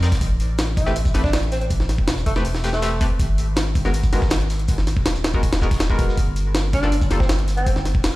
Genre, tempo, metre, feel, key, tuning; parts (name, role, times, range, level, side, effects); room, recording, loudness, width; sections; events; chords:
drum and bass, jungle; 161 BPM; 4/4; straight; A4 = 439 Hz
band-passed chord stab; stabs; 0.0-7.2 s; G3 to D5; -28 LUFS; left 2 dB; chorus, dub echo
saturated sub bass; bass; 0.0-8.2 s; D1 to F2; -22 LUFS; equal
crunchy breakbeat drum kit; drums; 0.0-8.1 s; hi-hat, shaker, snare drum; -35 LUFS; right 3 dB; high-pass filter on hats, studio reverb, high-pass filter on snare, high-pass filter on perc, high-pass filter on room
jungle sampler-style drum kit; drums; 0.0-8.1 s; hi-hat, kick drum, snare drum; -21 LUFS; equal; studio reverb
mellow tenor saxophone; melody; 0.8-3.0, 6.7-8.2 s; A3 to E4; -27 LUFS; equal; vintage 12-bit sampler grit, dub echo
studio ambience; played on a big sound system in a bare room, stone room reverb; -18 LUFS; side -18 dB against mid
0.0-8.2 A section
0.2 Am9; 3.2 G#m9; 6.2 N.C.